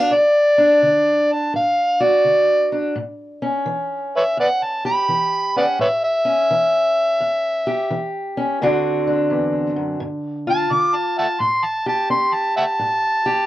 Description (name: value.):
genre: acoustic country blues, solo or duo.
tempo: 85 BPM.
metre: 4/4.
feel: swing 66% on 8ths.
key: unclear.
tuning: A4 = 441 Hz.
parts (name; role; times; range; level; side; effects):
overdriven harmonica; melody; 0.0-13.5 s; B4 to D6; -16 LUFS; equal; plate reverb.
fingerpicked steel-string acoustic guitar; accompaniment; 0.0-13.5 s; D2 to G4; -22 LUFS; equal; none.
room: moderate booth ambience, RT60 0.2 s.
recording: worn, warbling old tape, cassette tape, warbly pitch drift.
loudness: -16 LUFS.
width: side -15 dB against mid.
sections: 0.0-13.5 A section.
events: harmonica solo 0.0-13.5.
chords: 0.0 D; 3.0 A7; 8.6 D7; 10.0 G5; 11.4 A7.